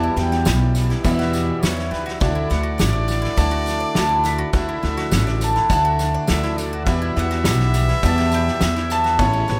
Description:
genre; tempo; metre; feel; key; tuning
indie folk with a building arrangement; 103 BPM; 4/4; straight; unclear; A4 = 444 Hz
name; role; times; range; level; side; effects
bowl-back mandolin; melody; 0.0-9.6 s; F#5 to B5; -26 LUFS; equal; digital delay
clear trumpet; second line; 0.0-9.6 s; B4 to E5; -30 LUFS; equal; none
picked plugged-in twelve-string acoustic guitar; accompaniment; 0.0-9.6 s; E2 to F#4; -29 LUFS; equal; none
hand-pumped harmonium; sustained chords; 0.0-9.6 s; C#3 to E4; -39 LUFS; equal; none
bowl-back mandolin; arpeggios; 0.0-9.6 s; G3 to D5; -34 LUFS; equal; none
upright bass; bass; 0.0-9.6 s; A1 to E2; -23 LUFS; equal; none
loose indie drum kit; drums; 0.2-9.6 s; kick drum, snare drum; -27 LUFS; equal; none
tambourine; percussion; 0.2-9.6 s; none; -37 LUFS; equal; none
room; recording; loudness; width
small room ambience; rough home demo mix; -19 LUFS; mono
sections
0.0-9.6 A section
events
none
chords
0.0 Emadd9; 2.2 Dadd9; 6.9 Emadd9

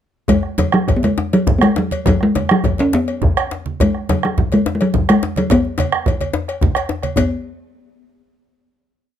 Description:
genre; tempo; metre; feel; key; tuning
west african traditional, West African drum ensemble; 135-153 BPM (dotted quarters); 12/8; straight; unclear; A4 = 439 Hz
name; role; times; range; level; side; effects
talking drum; melody; 0.3-7.3 s; F#3 to C#4; -16 LUFS; equal; plate reverb
bombo; percussion; 0.3-7.3 s; none; -19 LUFS; right 1 dB; none
congas; percussion; 0.3-7.3 s; none; -22 LUFS; right 5 dB; none
cowbell; percussion; 0.3-7.3 s; none; -25 LUFS; left 4 dB; none
djembe; percussion; 0.3-7.3 s; none; -23 LUFS; left 5 dB; none
room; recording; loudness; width
light reverb; close, detailed microphones; -14 LUFS; side -10 dB against mid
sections
0.3-7.2 A section; 7.2-8.8 final note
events
speeding up 0.3-8.8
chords
none

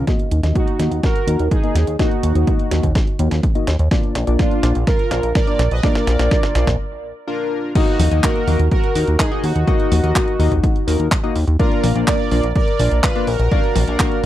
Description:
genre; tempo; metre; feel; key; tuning
italo disco; 125 BPM; 4/4; straight; Eb harmonic minor; A4 = 440 Hz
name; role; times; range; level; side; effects
chorused polysynth; stabs; 0.0-14.3 s; Bb3 to F5; -23 LUFS; left 4 dB; none
chorused synth bass; bass; 0.0-14.3 s; Bb1 to Eb2; -17 LUFS; equal; tube saturation
clean 12-bit digital drum machine; drums; 0.1-14.3 s; crash cymbal, handclaps, hi-hat, snare drum, toms; -24 LUFS; left 1 dB; high-pass filter on hats, studio reverb, high-pass filter on snare, high-pass filter on toms, high-pass filter on cymbals
electronic kick drum; drums; 0.1-14.1 s; none; -18 LUFS; equal; studio reverb
analog synth brass; melody; 0.6-14.3 s; D4 to Eb5; -22 LUFS; right 2 dB; chorus, tape echo
room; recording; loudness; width
little or no reverb; dry, close 1970s-style studio recording; -15 LUFS; side -13 dB against mid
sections
0.1-7.8 A section; 7.8-14.3 B section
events
drum fill 0.1-6.8; filter sweep on analog polysynth 0.1-7.8; break 6.8-7.8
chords
0.1 Ebm; 3.9 Bb; 7.8 Ebm; 11.6 Bb

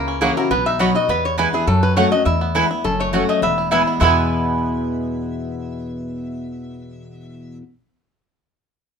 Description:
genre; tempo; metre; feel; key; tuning
bluegrass; 206 BPM; 4/4; straight; E major; A4 = 439 Hz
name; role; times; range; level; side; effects
lap resonator guitar; melody; 0.0-7.6 s; G#4 to E5; -21 LUFS; left 3 dB; none
picked steel-string acoustic guitar; accompaniment; 0.0-7.6 s; E2 to F#4; -22 LUFS; left 3 dB; none
bluegrass banjo; arpeggios; 0.0-7.6 s; F#3 to G#4; -23 LUFS; right 8 dB; none
upright bass; bass; 0.0-7.6 s; E1 to F#2; -24 LUFS; equal; none
mandolin; stabs; 0.2-7.6 s; A3 to B5; -22 LUFS; right 5 dB; none
room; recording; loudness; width
moderate small room reverb, RT60 0.5 s; minimal, uncompressed stereo recording; -16 LUFS; side -6 dB against mid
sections
0.0-2.8 A section; 2.8-4.0 B section; 4.0-6.3 C section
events
none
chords
0.0 F#7; 0.5 B; 1.1 E; 1.7 F#m; 2.3 E; 2.8 F#m; 3.4 E

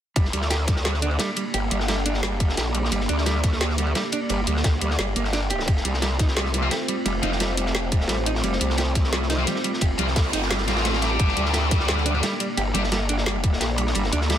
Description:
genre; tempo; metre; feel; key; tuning
dark technical drum and bass; 174 BPM; 4/4; straight; G minor; A4 = 441 Hz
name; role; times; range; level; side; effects
dark analog pad; sustained chords; 0.6-14.4 s; A3 to D5; -31 LUFS; right 1 dB; chorus, phaser, sidechain pumping
mellow electric guitar; arpeggios; 0.2-14.4 s; G3 to G4; -30 LUFS; right 4 dB; warbly pitch drift, sidechain pumping, tape echo
growl bass; bass; 0.2-14.4 s; F1 to D2; -25 LUFS; equal; chorus, sidechain pumping
crunchy breakbeat drum kit; drums; 0.2-14.4 s; ride cymbal, snare drum; -29 LUFS; equal; high-pass filter on cymbals, high-pass filter on snare, high-pass filter on room
drum and bass drum kit; drums; 0.2-14.4 s; hi-hat, snare drum; -27 LUFS; left 1 dB; none
electronic kick drum; drums; 0.2-13.5 s; none; -21 LUFS; equal; none
sludgy distorted guitar; stabs; 6.6-7.3, 9.4-12.8 s; F3 to G4; -28 LUFS; left 2 dB; overdrive, tape echo
noise sweep; sound effects; 10.0-11.2 s; none; -32 LUFS; right 4 dB; none
room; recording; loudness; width
light reverb; dense, heavily limited modern master; -20 LUFS; side -10 dB against mid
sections
0.2-14.4 A section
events
noise sweep 10.0-11.2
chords
0.2 Gm; 5.7 F; 11.2 Gm

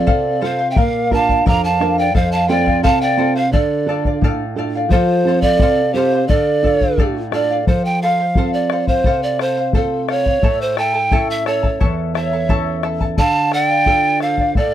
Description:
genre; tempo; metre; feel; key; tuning
andean folk, Andean ensemble; 87 BPM; 2/4; straight; unclear; A4 = 441 Hz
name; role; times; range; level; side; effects
breathy mellow polished pan flute; melody; 0.0-14.7 s; A4 to Bb5; -18 LUFS; right 3 dB; none
mellow hollow pan flute; second line; 0.0-7.3, 12.2-14.7 s; F4 to F5; -22 LUFS; equal; none
charango; accompaniment; 0.0-14.7 s; E4 to A5; -22 LUFS; left 5 dB; none
nylon-string guitar; accompaniment; 0.0-14.7 s; E2 to Bb4; -21 LUFS; right 3 dB; none
bombo; percussion; 0.1-14.7 s; none; -18 LUFS; left 2 dB; none
room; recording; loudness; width
light reverb; dry, close 1970s-style studio recording; -14 LUFS; side -11 dB against mid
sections
0.0-7.7 A section; 7.7-14.7 B section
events
none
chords
0.0 F; 0.8 Bb; 2.2 F; 3.5 Dm; 4.9 F; 6.3 Dm; 7.7 F; 10.4 A; 13.2 Dm

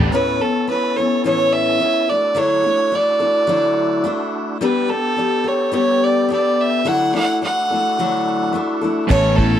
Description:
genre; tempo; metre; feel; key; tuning
folk rock and heartland rock; 107 BPM; 4/4; straight; A mixolydian; A4 = 439 Hz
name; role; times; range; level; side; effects
picked steel-string acoustic guitar; accompaniment; 0.0-9.6 s; A2 to A4; -20 LUFS; left 4 dB; none
tonewheel organ; sustained chords; 0.0-9.6 s; A3 to A4; -28 LUFS; right 1 dB; overdrive, fast rotary speaker
cranked stack guitar; riff; 0.0-0.1, 9.1-9.6 s; A2 to A4; -22 LUFS; right 3 dB; overdrive
picked electric bass; bass; 0.0-0.1, 9.1-9.6 s; A1; -18 LUFS; right 1 dB; none
bright fiddle; melody; 0.1-9.6 s; A4 to F#5; -18 LUFS; right 2 dB; none
clear baby grand piano; accompaniment; 9.1-9.5 s; C#4 to B4; -29 LUFS; right 3 dB; none
natural country drum kit; drums; 9.1-9.5 s; crash cymbal, kick drum; -20 LUFS; equal; none
room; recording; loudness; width
studio reverb; dry, close 1970s-style studio recording; -15 LUFS; side -10 dB against mid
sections
0.1-9.6 A section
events
none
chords
0.1 Aadd9; 2.1 Dadd9; 4.6 Gadd9; 6.8 Dadd9; 9.1 Aadd9

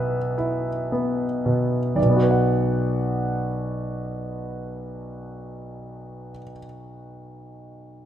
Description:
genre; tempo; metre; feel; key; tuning
classical; 35-42 BPM; 4/4; rubato; B minor; A4 = 439 Hz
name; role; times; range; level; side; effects
clear concert grand piano; melody; 0.0-8.1 s; B1 to F#5; -23 LUFS; equal; none
room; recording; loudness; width
moderate scoring stage reverb, RT60 1.6 s; none; -21 LUFS; side -10 dB against mid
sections
0.0-2.0 A section; 2.0-7.8 B section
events
slowing down 0.0-2.0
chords
0.0 Em/B; 2.0 Bm

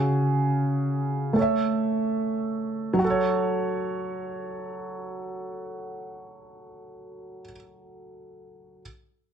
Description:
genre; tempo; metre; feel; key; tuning
hip hop; free time; none; none; F# minor; A4 = 441 Hz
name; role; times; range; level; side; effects
dark concert grand piano; accompaniment; 0.0-8.8 s; C#3 to E5; -25 LUFS; right 1 dB; low-pass filter
room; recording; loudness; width
light reverb, small room reverb; dense, heavily limited modern master; -24 LUFS; side -8 dB against mid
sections
0.0-3.0 A section; 3.0-6.3 B section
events
none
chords
0.0 C#sus4; 1.4 A; 3.0 F#m

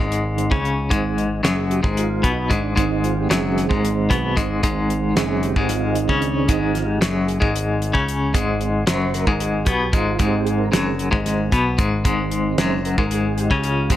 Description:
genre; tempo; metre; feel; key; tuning
psychedelic rock; 226 BPM (eighths); 7/8; straight; unclear; A4 = 440 Hz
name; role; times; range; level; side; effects
tonewheel organ; sustained chords; 0.0-14.0 s; Eb3 to C5; -26 LUFS; right 9 dB; slow rotary speaker, chorus vibrato
twelve-string electric guitar; riff; 0.0-14.0 s; Gb2 to Db3; -21 LUFS; left 3 dB; tremolo
modern bright picked electric bass; bass; 0.0-14.0 s; Gb1 to Db2; -25 LUFS; equal; none
damped 70s drum kit; drums; 0.1-14.0 s; hi-hat, kick drum, snare drum; -22 LUFS; equal; none
room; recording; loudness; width
light reverb, small room ambience; none; -17 LUFS; side -12 dB against mid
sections
0.0-14.0 A section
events
tonewheel organ solo 0.0-14.0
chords
0.0 Ab

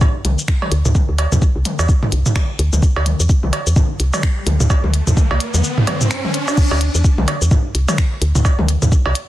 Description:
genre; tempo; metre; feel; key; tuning
minimal techno; 128 BPM; 4/4; swing 59% on 16ths; unclear; A4 = 440 Hz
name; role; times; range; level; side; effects
electronic kick drum; drums; 0.0-9.0 s; none; -14 LUFS; equal; studio reverb
minimal click drum kit; drums; 0.0-9.3 s; crash cymbal, finger snaps, hi-hat, shaker; -25 LUFS; left 2 dB; studio reverb, soft clipping on snare
electronic toms and cowbell; percussion; 0.0-9.1 s; none; -20 LUFS; right 1 dB; studio reverb
woody FM bass; bass; 0.2-9.1 s; C2 to E2; -16 LUFS; equal; sidechain pumping
riser; sound effects; 4.4-6.6 s; none; -25 LUFS; equal; none
room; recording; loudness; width
little or no reverb; dense, heavily limited modern master, lossy compression artefacts; -14 LUFS; side -14 dB against mid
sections
0.0-6.6 A section; 6.6-9.3 B section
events
riser 4.4-6.6; break 5.6-6.6; drop 6.6-9.3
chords
none

